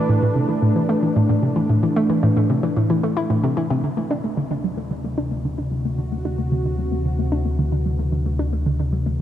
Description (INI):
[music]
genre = ambient, sequencer-driven space music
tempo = 112 BPM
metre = 4/4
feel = straight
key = unclear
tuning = A4 = 440 Hz
[part]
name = sweeping resonant pad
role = sustained chords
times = 0.0-9.2 s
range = C3 to B4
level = -24 LUFS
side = equal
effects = wide subtle chorus
[part]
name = hollow square pluck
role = riff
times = 0.0-9.1 s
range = A2 to E4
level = -21 LUFS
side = equal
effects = chorus, phaser, tape echo
[part]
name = fat analog bass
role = bass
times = 3.8-9.2 s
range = D2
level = -25 LUFS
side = left 1 dB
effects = none
[sound]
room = wet huge ambient reverb, RT60 7.2 s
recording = dark, warm production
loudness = -18 LUFS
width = side -11 dB against mid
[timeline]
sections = 0.0-3.8 A section; 3.8-9.2 B section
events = filter sweep on synth arpeggio sound 0.0-3.8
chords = 0.0 Am7; 3.8 D7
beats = 0.09 0.62 1.16 | 1.70 2.23 2.77 3.30 | 3.84 4.38 4.91 5.45 | 5.98 6.52 7.05 7.59 | 8.12 8.66 9.20